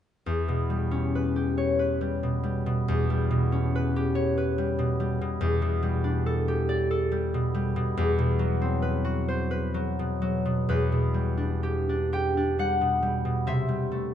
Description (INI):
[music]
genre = classical, solo harp piece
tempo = 59-75 BPM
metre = 3/4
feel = rubato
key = E minor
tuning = A4 = 440 Hz
[part]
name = concert harp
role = solo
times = 0.3-14.1 s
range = E2 to G5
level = -24 LUFS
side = equal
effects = none
[sound]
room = moderate stone room reverb, RT60 1.4 s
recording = nothing above 10.7 kHz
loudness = -24 LUFS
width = side -10 dB against mid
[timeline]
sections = 0.3-10.7 A section; 10.7-14.1 B section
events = none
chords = 0.3 Em6; 5.4 Em7; 8.0 Cmaj7#11/E; 10.7 Em7; 13.5 C69